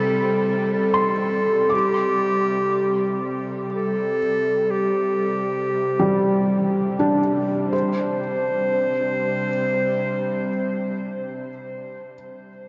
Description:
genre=ambient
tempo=60 BPM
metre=3/4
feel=straight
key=unclear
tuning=A4 = 438 Hz
part: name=clear clarinet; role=melody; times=0.0-11.5 s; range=G4 to C5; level=-25 LUFS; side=equal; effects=tape echo
part: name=felt-muted upright piano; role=arpeggios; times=0.0-12.7 s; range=G3 to D6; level=-26 LUFS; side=equal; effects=tape echo
part: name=bowed-like drone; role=drone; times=0.0-11.6 s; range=C3 to G3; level=-29 LUFS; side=equal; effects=built-in reverb
room=wet huge ambient reverb, RT60 7.3 s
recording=dark, warm production, nothing above 7.8 kHz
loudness=-22 LUFS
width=mono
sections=0.0-7.7 A section; 7.7-10.7 B section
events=none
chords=0.0 Am7/C; 1.7 Csus2

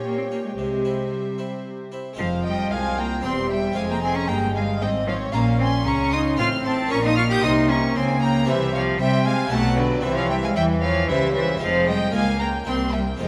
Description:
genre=classical, baroque-style concerto movement with solo episodes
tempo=114 BPM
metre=3/4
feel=straight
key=F minor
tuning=A4 = 440 Hz
part: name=rich chamber violin section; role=melody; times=0.0-13.3 s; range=D5 to G6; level=-32 LUFS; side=equal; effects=none
part: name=warm chamber violin section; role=second line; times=0.0-13.3 s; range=B4 to Eb6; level=-30 LUFS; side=equal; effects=none
part: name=dark chamber viola section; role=accompaniment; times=0.0-13.3 s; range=E3 to G4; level=-30 LUFS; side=equal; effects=none
part: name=harpsichord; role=accompaniment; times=0.0-13.3 s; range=C2 to G4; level=-36 LUFS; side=equal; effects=none
part: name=warm chamber cello section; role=bass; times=0.0-13.3 s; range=C2 to C4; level=-30 LUFS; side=equal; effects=none
part: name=dark cello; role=melody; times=0.1-13.3 s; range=D3 to G4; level=-27 LUFS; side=equal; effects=none
part: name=dark studio double bass section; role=bass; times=0.6-13.3 s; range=E1 to C3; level=-30 LUFS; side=equal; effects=none
room=moderate scoring stage reverb, RT60 1.6 s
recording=none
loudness=-22 LUFS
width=mono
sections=0.0-2.2 A section; 2.2-13.3 B section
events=none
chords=0.0 Gdim/Bb; 0.6 C; 2.2 Fm; 3.2 C/E; 3.8 Fm; 5.3 Bbm; 6.4 F/A; 6.9 Bbm; 8.5 C5; 9.5 G/B; 10.0 C; 11.6 Fm; 12.1 Bbm/Db; 12.7 C7

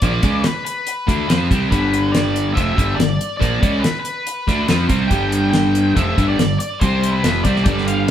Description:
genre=classic rock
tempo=142 BPM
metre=4/4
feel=straight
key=G major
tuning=A4 = 440 Hz
part: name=octave-fuzz lead guitar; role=melody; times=0.0-8.1 s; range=B4 to G5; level=-24 LUFS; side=left 1 dB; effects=distortion
part: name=distorted electric guitar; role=riff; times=0.0-8.1 s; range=F2 to F4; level=-19 LUFS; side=equal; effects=distortion
part: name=growling fingered electric bass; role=bass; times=0.0-8.1 s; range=F1 to F2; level=-21 LUFS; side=equal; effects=overdrive
part: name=damped 70s drum kit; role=drums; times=0.0-8.1 s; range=hi-hat, kick drum, snare drum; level=-19 LUFS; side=equal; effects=none
room=moderate stone room reverb, RT60 1.0 s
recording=band playing live in one room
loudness=-15 LUFS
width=side -10 dB against mid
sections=0.0-8.1 A section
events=none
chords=0.0 G; 6.8 C5; 7.2 G5

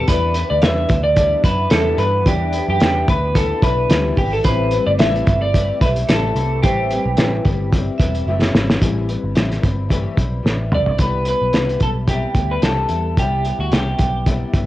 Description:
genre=indie pop, bedroom pop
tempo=110 BPM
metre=4/4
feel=swing 55% on 16ths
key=unclear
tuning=A4 = 442 Hz
part: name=electric guitar through a small old amp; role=melody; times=0.0-14.3 s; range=F#4 to E5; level=-20 LUFS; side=equal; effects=wide subtle chorus, cassette tape, analog delay
part: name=nylon-string guitar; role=accompaniment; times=0.0-14.7 s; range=A2 to B4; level=-26 LUFS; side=left 5 dB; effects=lush chorus, vibrato effect, cassette tape
part: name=hollow soft pad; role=sustained chords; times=0.0-8.8 s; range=E3 to G4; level=-33 LUFS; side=equal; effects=none
part: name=vintage muted picked electric bass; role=bass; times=0.0-14.7 s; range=E1 to G2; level=-21 LUFS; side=equal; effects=none
part: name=vibraphone with hard mallets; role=second line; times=0.1-8.4 s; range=B4 to E5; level=-30 LUFS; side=right 7 dB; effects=wide subtle chorus, cassette tape, analog delay
part: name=cloth-damped thuddy drum kit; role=drums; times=0.1-14.7 s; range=hi-hat, kick drum, snare drum, toms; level=-18 LUFS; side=equal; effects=vintage 12-bit sampler grit, cassette tape
room=light reverb, small room ambience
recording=home recording on cassette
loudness=-15 LUFS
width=side -15 dB against mid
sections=0.0-8.8 A section; 8.8-11.0 B section; 11.0-14.7 C section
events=drum fill 8.3-8.8, 10.4-11.0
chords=0.1 Em7; 4.4 Am9; 11.0 Cmaj7

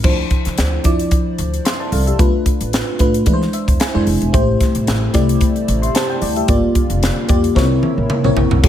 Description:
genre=polished 1980s jazz-funk pop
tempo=112 BPM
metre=4/4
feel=swing 54% on 16ths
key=unclear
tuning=A4 = 441 Hz
part: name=FM electric piano with soft pad layer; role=accompaniment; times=0.0-8.7 s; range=F3 to C6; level=-18 LUFS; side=left 2 dB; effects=wide subtle chorus
part: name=upright bass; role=bass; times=0.0-8.7 s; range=E1 to E3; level=-19 LUFS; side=equal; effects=none
part: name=crisp fusion drum kit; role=drums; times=0.0-8.7 s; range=crash cymbal, hi-hat, kick drum, snare drum, toms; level=-17 LUFS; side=equal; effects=gated reverb
part: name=chorused pulse-width pad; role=sustained chords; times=4.3-8.7 s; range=C3 to F4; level=-25 LUFS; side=right 2 dB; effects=none
room=small room ambience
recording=none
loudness=-14 LUFS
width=side -11 dB against mid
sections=0.0-8.6 A section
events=FM electric piano fill 3.3-4.3; drum fill 7.6-8.6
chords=0.0 Dm9; 2.2 Bm7b5; 3.3 Eaug7; 4.3 Am7; 6.5 Gm7; 7.6 C7b9

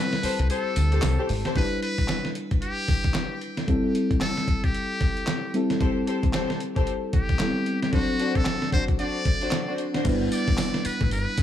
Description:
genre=R&B, new jack swing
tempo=113 BPM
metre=4/4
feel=swing 61% on 16ths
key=unclear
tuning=A4 = 440 Hz
part: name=trumpet with metal mute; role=melody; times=0.0-11.4 s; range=F#4 to D5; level=-31 LUFS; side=left 1 dB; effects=digital delay
part: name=mellow FM electric piano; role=accompaniment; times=0.0-11.4 s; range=F#3 to B4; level=-28 LUFS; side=equal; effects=chorus
part: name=dusty soul sampler-style drum kit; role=drums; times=0.1-11.4 s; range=crash cymbal, handclaps, hi-hat, kick drum, snare drum, tambourine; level=-25 LUFS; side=equal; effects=overdrive
part: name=dark studio string section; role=stabs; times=0.2-1.6, 5.8-10.1 s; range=D4 to C5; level=-30 LUFS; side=left 4 dB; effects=none
part: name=deep dub fingered electric bass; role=bass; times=0.2-1.4, 10.1-11.4 s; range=G1 to G2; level=-24 LUFS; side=equal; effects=none
room=light reverb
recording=none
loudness=-22 LUFS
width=side -10 dB against mid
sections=0.0-1.6 A section; 1.6-10.1 B section; 10.1-11.4 A section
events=break 0.0-1.6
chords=0.0 Am7; 1.6 G6; 3.7 C6; 5.5 Am7; 7.9 D7; 10.1 G6

